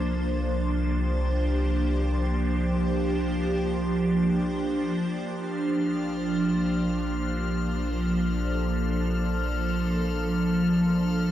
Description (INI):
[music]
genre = ambient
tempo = free time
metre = none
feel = none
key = unclear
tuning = A4 = 440 Hz
[part]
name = evolving wavetable pad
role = sustained chords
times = 0.0-11.3 s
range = F3 to C5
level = -25 LUFS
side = right 1 dB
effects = ensemble chorus, built-in reverb, phaser
[part]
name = round analog bass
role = bass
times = 0.0-11.3 s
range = Bb1 to C2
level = -29 LUFS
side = equal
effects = none
[part]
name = drifting glass-harmonics texture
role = texture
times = 0.0-11.3 s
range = F6 to A6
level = -39 LUFS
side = left 6 dB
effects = chorus, built-in reverb
[sound]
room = wet huge ambient reverb, RT60 9.2 s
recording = dark, warm production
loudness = -24 LUFS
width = side -12 dB against mid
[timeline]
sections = 0.0-11.3 A section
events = fade-in on synth texture 0.0-11.3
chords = 0.0 C9sus4; 5.3 Bbmaj9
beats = free time